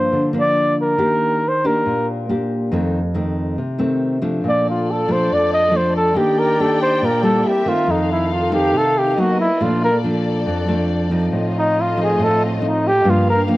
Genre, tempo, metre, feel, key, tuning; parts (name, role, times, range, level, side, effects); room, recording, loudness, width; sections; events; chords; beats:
bossa nova; 139 BPM; 4/4; straight; Bb major; A4 = 440 Hz
warm flugelhorn; melody; 0.0-13.4 s; C4 to Eb5; -18 LUFS; equal; cassette tape
nylon-string guitar; accompaniment; 0.0-13.6 s; F2 to G4; -19 LUFS; equal; cassette tape
warm studio string section; sustained chords; 4.4-13.6 s; A3 to G5; -24 LUFS; left 1 dB; cassette tape
light reverb, small room ambience; home recording on cassette; -15 LUFS; side -18 dB against mid
0.0-13.6 A section
flugelhorn solo 0.0-13.6
0.0 Gm7 (rootless); 1.0 Ebmaj7; 2.7 F7; 4.4 Bbmaj7; 6.2 Ebmaj7; 7.4 C7; 7.9 F7; 9.2 Bmaj7; 9.6 Bbmaj7; 11.3 F7/A; 13.0 Gm7
0.12 0.56 | 0.99 1.42 1.85 2.28 | 2.71 3.14 3.57 4.00 | 4.43 4.86 5.29 5.72 | 6.15 6.58 7.02 7.45 | 7.88 8.31 8.74 9.17 | 9.60 10.03 10.46 10.89 | 11.32 11.75 12.18 12.62 | 13.04 13.48